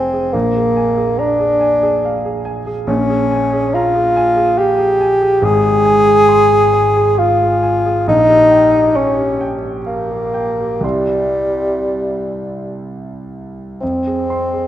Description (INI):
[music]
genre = classical, romantic duo for bassoon and grand piano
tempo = 59-72 BPM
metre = 3/4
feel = rubato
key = F minor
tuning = A4 = 440 Hz
[part]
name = mellow bassoon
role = melody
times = 0.0-14.7 s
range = G3 to Ab4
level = -13 LUFS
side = left 1 dB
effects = none
[part]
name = warm grand piano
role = accompaniment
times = 0.0-14.7 s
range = F1 to Db6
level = -19 LUFS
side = right 2 dB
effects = none
[sound]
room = moderate scoring stage reverb, RT60 1.9 s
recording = dark, warm production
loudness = -12 LUFS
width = side -12 dB against mid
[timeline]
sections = 0.0-13.8 A section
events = none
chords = 0.3 Bb7; 5.4 Fm/Ab; 8.1 Gm7b5/Bb; 10.8 C; 13.8 Fm